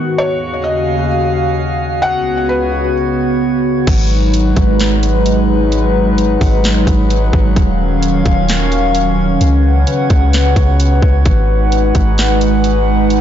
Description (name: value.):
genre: hip hop, atmospheric cloud-rap.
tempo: 130 BPM.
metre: 4/4.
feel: half-time.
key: G# dorian.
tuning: A4 = 442 Hz.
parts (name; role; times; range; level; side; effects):
hollow soft pad; sustained chords; 0.0-13.2 s; C#2 to F#5; -15 LUFS; equal; chorus, sidechain pumping.
drifting glass-harmonics texture; texture; 0.0-13.2 s; F#3 to F#5; -23 LUFS; left 2 dB; chorus, built-in reverb.
felt-muted upright piano; melody; 0.2-2.9 s; B4 to F#5; -20 LUFS; left 1 dB; ping-pong delay.
long sustained 808-style bass; bass; 3.9-13.2 s; D#1 to C#2; -14 LUFS; equal; none.
trap drum kit; drums; 3.9-13.2 s; crash cymbal, hi-hat, kick drum, snare drum; -17 LUFS; equal; none.
room: digital ambience.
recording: blown-out, overdriven recording, overdrive, nothing above 7.6 kHz.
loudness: -11 LUFS.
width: side -10 dB against mid.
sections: 0.0-3.9 A section; 3.9-13.2 B section.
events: none.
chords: 0.2 D#m9; 2.0 C#7sus4; 3.9 G#m7; 7.6 D#m9; 9.4 C#7sus4; 11.3 G#m7.